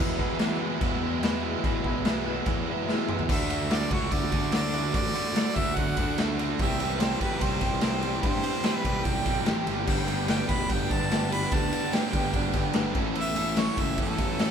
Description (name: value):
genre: classic rock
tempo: 146 BPM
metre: 4/4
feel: straight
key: unclear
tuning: A4 = 440 Hz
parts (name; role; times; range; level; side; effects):
- overdriven reed electric piano; accompaniment; 0.0-3.3, 9.9-14.5 s; C#4 to G#5; -38 LUFS; left 5 dB; medium tremolo
- overdriven semi-hollow guitar; riff; 0.0-14.5 s; E2 to A4; -31 LUFS; right 8 dB; spring reverb
- raw garage guitar; riff; 0.0-14.5 s; E2 to A4; -33 LUFS; left 6 dB; overdrive
- fuzz picked electric bass; bass; 0.0-14.5 s; E1 to E3; -33 LUFS; equal; overdrive
- raw garage drum kit; drums; 0.2-14.5 s; crash cymbal, kick drum, ride cymbal, snare drum, toms; -28 LUFS; equal; none
- clear harmonica; melody; 3.3-14.5 s; A4 to B5; -32 LUFS; equal; none
room: light reverb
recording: band playing live in one room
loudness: -24 LUFS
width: side -7 dB against mid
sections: 0.0-3.3 A section; 3.3-14.5 B section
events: reed electric piano fill 2.7-3.3; drum fill 2.9-3.3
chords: 0.0 E; 3.3 D; 6.6 C; 9.9 G; 13.0 A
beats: 0.40 0.82 1.23 | 1.64 2.06 2.47 2.88 | 3.30 3.71 4.12 4.54 | 4.95 5.36 5.77 6.18 | 6.59 7.01 7.42 7.83 | 8.24 8.65 9.06 9.47 | 9.88 10.29 10.70 11.11 | 11.52 11.93 12.34 12.75 | 13.16 13.57 13.98 14.39